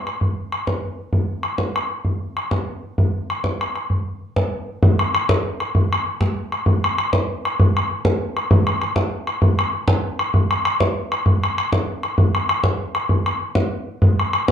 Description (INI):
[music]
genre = celtic folk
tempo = 130 BPM (dotted quarters)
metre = 12/8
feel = straight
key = none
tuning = none
[part]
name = bodhran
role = percussion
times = 0.1-14.5 s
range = none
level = -18 LUFS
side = equal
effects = none
[sound]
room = wet small room ambience, RT60 0.5 s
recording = band playing live in one room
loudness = -18 LUFS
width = side -9 dB against mid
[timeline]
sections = 0.0-4.8 A section; 4.8-14.5 B section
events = none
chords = none